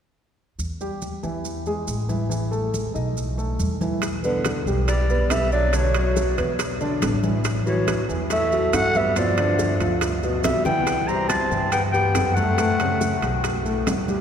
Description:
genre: Afro-Cuban jazz.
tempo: 140 BPM.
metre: 4/4.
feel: straight.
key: E minor.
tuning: A4 = 440 Hz.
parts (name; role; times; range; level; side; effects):
upright bass; bass; 0.6-14.2 s; A1 to G2; -26 LUFS; equal; none.
congas; percussion; 0.6-14.2 s; none; -32 LUFS; right 1 dB; none.
maracas; percussion; 0.6-14.2 s; none; -37 LUFS; right 6 dB; none.
warm baby grand piano; accompaniment; 0.8-14.2 s; A2 to D#5; -26 LUFS; left 1 dB; none.
bongos; percussion; 4.0-14.2 s; none; -33 LUFS; left 5 dB; none.
timbales; percussion; 4.0-14.1 s; none; -30 LUFS; right 5 dB; none.
growling clarinet; melody; 4.2-13.6 s; B4 to A#5; -24 LUFS; equal; none.
warm tenor saxophone; second line; 4.2-13.7 s; D3 to C4; -29 LUFS; left 1 dB; none.
room: wet cathedral reverb, RT60 7.2 s.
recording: recorded in a church or concert hall.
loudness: -20 LUFS.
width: side -8 dB against mid.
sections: 0.6-4.0 A section; 4.0-14.2 B section.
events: drum fill 10.4-10.9.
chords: 0.6 Em; 1.4 E; 2.3 Asus2; 3.2 B7; 4.0 Em7; 5.7 Bmadd9; 6.6 E5; 7.5 A69; 9.2 G6; 10.9 Cmaj7#11; 12.6 F#m; 13.4 B5.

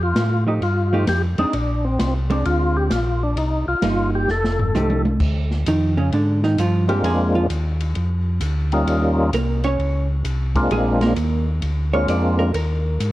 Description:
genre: soul jazz organ trio.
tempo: 131 BPM.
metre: 4/4.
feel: swing 67% on 8ths.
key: Bb mixolydian.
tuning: A4 = 440 Hz.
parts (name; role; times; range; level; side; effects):
percussive tonewheel organ; melody; 0.0-12.5 s; G3 to A4; -22 LUFS; left 1 dB; slow rotary speaker, overdrive, chorus vibrato.
mellow tonewheel organ; bass; 0.0-13.1 s; F1 to A2; -21 LUFS; equal; slow rotary speaker.
open jazz drum kit; drums; 0.2-13.1 s; crash cymbal, hi-hat, kick drum, ride cymbal, snare drum, toms; -28 LUFS; equal; none.
hollow-body jazz guitar; accompaniment; 0.5-13.1 s; Db3 to D5; -23 LUFS; right 2 dB; none.
room: light reverb, studio reverb.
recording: cassette tape.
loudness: -17 LUFS.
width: side -16 dB against mid.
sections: 0.0-5.2 A section; 5.2-13.1 B section.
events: drum fill 4.3-5.2; hollow-body jazz guitar solo 5.2-13.1.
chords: 0.0 F9; 1.5 Bb9; 3.4 Cm7; 4.3 F9; 5.2 Bb9; 8.9 Eb9; 10.7 Bb9; 12.5 Eb5.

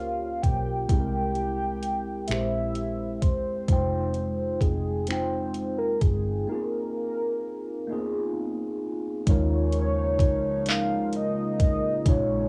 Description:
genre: slow six-eight R&B.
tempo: 43 BPM (dotted quarters).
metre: 6/8.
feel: straight.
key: unclear.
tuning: A4 = 440 Hz.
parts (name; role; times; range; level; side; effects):
warm velvety synth lead; melody; 0.0-12.5 s; Ab4 to G5; -32 LUFS; equal; chorus, tremolo, cassette tape.
mellow tine electric piano; accompaniment; 0.0-12.5 s; Ab3 to G5; -32 LUFS; equal; phaser, cassette tape.
vintage muted fingered electric bass; bass; 0.0-12.5 s; E1 to Eb2; -33 LUFS; equal; none.
smooth R&B drum kit; drums; 0.4-12.3 s; finger snaps, handclaps, hi-hat, kick drum; -26 LUFS; equal; cassette tape.
hollow soft pad; sustained chords; 9.3-12.5 s; Db3 to Eb4; -36 LUFS; equal; chorus, cassette tape.
room: little or no reverb.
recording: home recording on cassette, studio ambience.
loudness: -27 LUFS.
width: mono.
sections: 0.0-9.3 A section; 9.3-12.5 B section.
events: break 6.5-9.3.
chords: 0.0 Eb13 (rootless); 0.9 C7b13; 3.7 Fm9; 6.5 Ab69; 9.3 Eb9sus4.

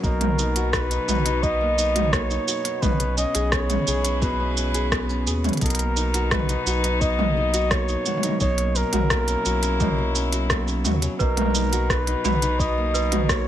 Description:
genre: folktronica.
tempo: 86 BPM.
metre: 4/4.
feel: straight.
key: B major.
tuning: A4 = 440 Hz.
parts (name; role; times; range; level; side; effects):
mellow flugelhorn; melody; 0.0-13.5 s; A#4 to D#5; -26 LUFS; equal; ping-pong delay.
worn celesta; second line; 0.0-0.1, 11.2-13.5 s; B4 to B5; -31 LUFS; right 5 dB; ping-pong delay.
warm string quartet; sustained chords; 0.0-13.5 s; B2 to B4; -31 LUFS; left 3 dB; vintage 12-bit sampler grit.
nylon-string guitar; arpeggios; 0.0-13.5 s; B2 to G#4; -29 LUFS; left 1 dB; ping-pong delay.
round analog bass; bass; 0.0-13.5 s; B1 to D#2; -25 LUFS; equal; none.
electronic kick drum; drums; 0.0-13.4 s; none; -26 LUFS; equal; none.
organic electronic drum kit; drums; 0.0-13.4 s; hi-hat, rim click, shaker, toms; -25 LUFS; equal; none.
room: light reverb.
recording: none.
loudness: -20 LUFS.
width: side -11 dB against mid.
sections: 0.0-13.5 A section.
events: none.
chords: 0.0 Bmaj7; 2.8 E6/B; 5.6 Bmaj7; 8.4 F#7/B; 11.2 Bmaj7.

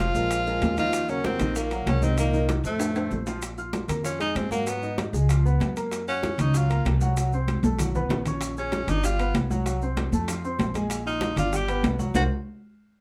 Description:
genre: Afro-Cuban jazz.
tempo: 193 BPM.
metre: 4/4.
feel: straight.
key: Bb minor.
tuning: A4 = 439 Hz.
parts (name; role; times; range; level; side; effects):
clear tenor saxophone; melody; 0.0-12.2 s; A3 to G4; -30 LUFS; equal; none.
mellow trombone; second line; 0.0-3.2 s; A2 to F3; -38 LUFS; equal; none.
warm grand piano; accompaniment; 0.0-12.2 s; Eb3 to Ab6; -34 LUFS; equal; none.
upright bass; bass; 0.0-12.3 s; G1 to Ab2; -29 LUFS; equal; none.
congas; percussion; 0.0-12.2 s; none; -34 LUFS; equal; none.
maracas; percussion; 0.0-12.2 s; none; -43 LUFS; equal; none.
bongos; percussion; 0.2-12.2 s; none; -40 LUFS; equal; none.
timbales; percussion; 0.3-12.2 s; none; -36 LUFS; equal; none.
room: moderate small room reverb, RT60 0.5 s.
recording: band playing live in one room.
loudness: -25 LUFS.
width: mono.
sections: 0.0-3.4 A section; 3.4-13.0 B section.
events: drum fill 2.8-3.4, 7.5-8.4; tenor saxophone solo 3.4-13.0; band accent 12.2-13.0.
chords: 0.3 Bb5; 0.9 Ebm; 2.2 Cm7; 2.8 F; 3.4 Bb5; 4.7 Abm7; 5.3 Db6; 5.9 Gbmaj7; 7.2 Am69; 7.8 B5; 8.4 Bbm7; 9.0 G7; 9.7 F#dim/C; 10.3 F5; 10.9 Bb5; 11.5 G; 12.2 Gb.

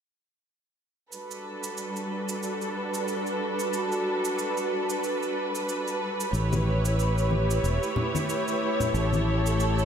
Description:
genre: sunset chillout.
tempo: 92 BPM.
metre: 4/4.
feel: swing 57% on 16ths.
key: G lydian.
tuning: A4 = 440 Hz.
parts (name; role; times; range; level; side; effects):
dark studio string section; sustained chords; 1.1-9.8 s; G3 to C#5; -27 LUFS; right 1 dB; none.
cabasa; drums; 1.1-9.8 s; none; -39 LUFS; right 5 dB; none.
fingered electric bass; bass; 6.3-9.8 s; E1 to A1; -25 LUFS; equal; none.
congas; percussion; 6.5-9.2 s; none; -34 LUFS; left 3 dB; none.
room: wet lush hall reverb, RT60 2.5 s.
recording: dreamy mix soaked in reverb.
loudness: -25 LUFS.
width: side -8 dB against mid.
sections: 1.1-9.8 A section.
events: none.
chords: 1.1 Gmaj7; 6.3 A7.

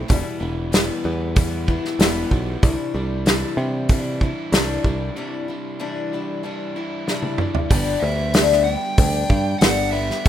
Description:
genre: folk rock and heartland rock.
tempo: 94 BPM.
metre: 4/4.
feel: straight.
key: unclear.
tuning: A4 = 440 Hz.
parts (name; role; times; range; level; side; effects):
picked old ladder-braced acoustic guitar; accompaniment; 0.0-10.3 s; E2 to G4; -25 LUFS; left 6 dB; none.
crunchy overdriven guitar; riff; 0.0-10.3 s; E2 to B4; -31 LUFS; right 5 dB; none.
picked electric bass; bass; 0.0-10.3 s; E1 to C3; -24 LUFS; right 1 dB; none.
natural country drum kit; drums; 0.1-10.3 s; hi-hat, kick drum, snare drum, toms; -18 LUFS; equal; none.
dark smooth lead guitar; melody; 7.7-10.3 s; D5 to G5; -25 LUFS; right 1 dB; overdrive, slapback echo.
room: little or no reverb.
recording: rough home demo mix.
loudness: -18 LUFS.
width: side -11 dB against mid.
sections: 0.0-7.7 A section; 7.7-10.3 B section.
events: break 5.2-7.7; drum fill 7.1-7.7.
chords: 0.1 Em; 2.6 Cadd9; 7.7 G.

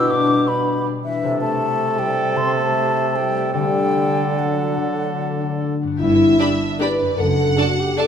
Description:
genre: classical, orchestral ballroom waltz.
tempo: 136-175 BPM.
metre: 3/4.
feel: rubato.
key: G major.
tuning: A4 = 440 Hz.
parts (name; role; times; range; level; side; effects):
mellow hollow silver concert flute; second line; 0.0-5.6 s; E5 to E6; -23 LUFS; left 3 dB; none.
warm oboe; second line; 0.0-5.8 s; G4 to A4; -27 LUFS; right 4 dB; none.
clear bassoon; accompaniment; 0.0-5.8 s; B2 to D3; -24 LUFS; right 4 dB; none.
mellow French horn section; sustained chords; 0.0-8.1 s; E3 to B4; -22 LUFS; left 2 dB; none.
concert harp; arpeggios; 0.0-8.1 s; F#2 to A4; -24 LUFS; left 5 dB; none.
rich studio violin section; melody; 6.0-8.1 s; D5 to F#5; -26 LUFS; equal; none.
dark studio double bass section; bass; 6.0-7.5 s; F#1 to G1; -24 LUFS; right 5 dB; none.
rich studio cello section; bass; 6.0-7.5 s; F#2 to G2; -26 LUFS; right 5 dB; none.
rich studio violin section; second line; 6.4-8.1 s; D5 to B5; -26 LUFS; equal; none.
rich studio viola section; accompaniment; 6.4-8.1 s; D4 to A4; -25 LUFS; right 1 dB; none.
room: wet recital hall reverb, RT60 1.7 s.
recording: none.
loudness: -17 LUFS.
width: side -8 dB against mid.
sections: 0.0-6.0 A section; 6.0-8.1 B section.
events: none.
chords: 0.0 G/B; 1.2 Am/C; 3.5 D; 6.0 G; 7.2 D/F#.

